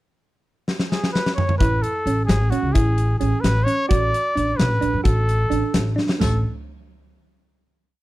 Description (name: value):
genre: progressive instrumental, band music in an uneven meter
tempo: 261 BPM (eighths)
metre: 5/8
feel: straight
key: A major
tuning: A4 = 438 Hz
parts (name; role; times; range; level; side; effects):
- big rock drum kit; drums; 0.7-6.3 s; hi-hat, kick drum, snare drum, splash cymbal, toms; -22 LUFS; left 1 dB; none
- warm trumpet; melody; 0.9-6.4 s; F#4 to D5; -24 LUFS; equal; slapback echo
- thumb-piano-like synth pluck; arpeggios; 1.6-6.4 s; A3 to F#4; -26 LUFS; right 4 dB; chorus
- upright bass; bass; 1.6-6.4 s; G#1 to F#2; -21 LUFS; equal; none
room: little or no reverb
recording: dry, close 1970s-style studio recording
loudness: -18 LUFS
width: side -17 dB against mid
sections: 0.4-1.6 pickup bar; 1.6-6.2 groove; 6.2-7.4 final note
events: drum fill 0.7-1.6, 6.0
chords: 0.4 N.C.; 1.6 Amaj7; 3.9 D6/A; 6.2 N.C.